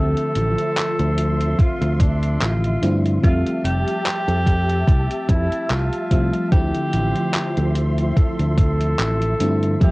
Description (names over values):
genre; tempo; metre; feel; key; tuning
vaporwave; 73 BPM; 4/4; swing 55% on 16ths; unclear; A4 = 440 Hz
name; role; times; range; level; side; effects
breathy alto saxophone; melody; 0.0-9.9 s; D4 to A4; -25 LUFS; equal; tape echo
FM electric piano with soft pad layer; accompaniment; 0.0-9.9 s; D3 to E5; -26 LUFS; equal; analog chorus, cassette tape
soft string machine; sustained chords; 0.0-9.9 s; F3 to C6; -28 LUFS; equal; ensemble chorus, cassette tape
fingered electric bass; bass; 0.0-9.9 s; F1 to G2; -20 LUFS; equal; none
detuned 8-bit digital drum machine; drums; 0.2-9.9 s; handclaps, hi-hat; -27 LUFS; equal; cassette tape
electronic kick drum; drums; 1.6-9.9 s; none; -17 LUFS; equal; cassette tape
room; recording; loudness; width
light reverb; home recording on cassette; -17 LUFS; side -22 dB against mid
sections
0.0-9.9 A section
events
none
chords
0.0 Dm9; 3.2 Fmaj9; 6.5 Dm9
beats
0.77 1.59 2.42 | 3.24 4.06 4.88 5.70 | 6.53 7.35 8.17 8.99 | 9.81